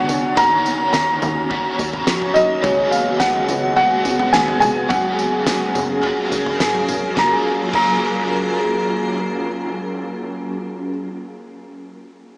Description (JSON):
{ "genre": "dream pop", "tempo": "106 BPM", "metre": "4/4", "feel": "straight", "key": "F# major", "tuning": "A4 = 445 Hz", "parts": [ { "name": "felt-muted upright piano", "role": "melody", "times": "0.0-10.9 s", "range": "C#5 to A#5", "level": "-18 LUFS", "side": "equal", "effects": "diffuse ambient delay" }, { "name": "biting overdriven guitar", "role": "accompaniment", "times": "0.0-11.3 s", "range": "C#3 to C#5", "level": "-25 LUFS", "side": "equal", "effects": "tremolo, ensemble chorus" }, { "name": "granular cloud pad", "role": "sustained chords", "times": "0.0-10.2 s", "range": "C#3 to C#5", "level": "-25 LUFS", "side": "equal", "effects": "built-in reverb" }, { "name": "electric guitar at the edge of break-up", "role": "arpeggios", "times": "0.0-11.4 s", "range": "B2 to C#5", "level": "-24 LUFS", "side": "equal", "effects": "analog chorus, diffuse ambient delay" }, { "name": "plucky analog bass", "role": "bass", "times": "0.0-10.2 s", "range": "E#1 to E#2", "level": "-30 LUFS", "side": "equal", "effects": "none" }, { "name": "loose indie drum kit", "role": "drums", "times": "0.1-7.9 s", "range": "crash cymbal, kick drum, snare drum, tambourine, toms", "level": "-25 LUFS", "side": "equal", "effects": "none" } ], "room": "wet huge ambient reverb, RT60 7.1 s", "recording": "dreamy mix soaked in reverb, small speaker sound", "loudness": "-16 LUFS", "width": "side -28 dB against mid", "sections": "0.0-7.2 A section; 7.2-9.4 B section", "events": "none", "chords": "0.4 D#m7; 2.6 C#7sus4; 4.9 F#maj9", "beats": "| 0.37 0.94 1.50 2.07 | 2.64 3.20 3.77 4.34 | 4.90 5.47 6.03 6.60 | 7.17 7.73 8.30 8.86" }